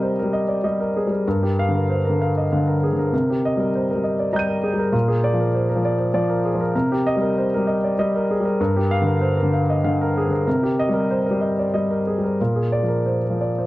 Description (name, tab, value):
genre	neoclassical minimalist piano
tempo	88-100 BPM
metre	3/4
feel	rubato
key	C minor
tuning	A4 = 439 Hz
part	clear grand piano	solo	0.0-13.7 s	G2 to Eb7	-18 LUFS	equal	none
room	little or no reverb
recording	dry, close 1970s-style studio recording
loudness	-18 LUFS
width	side -17 dB against mid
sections	0.0-13.7 A section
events	none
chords	0.0 Cm7; 1.3 Gm7; 3.1 Cm7; 4.9 Bb7; 6.7 Cm7; 8.6 Gm7; 10.5 Cm7; 12.4 Bb7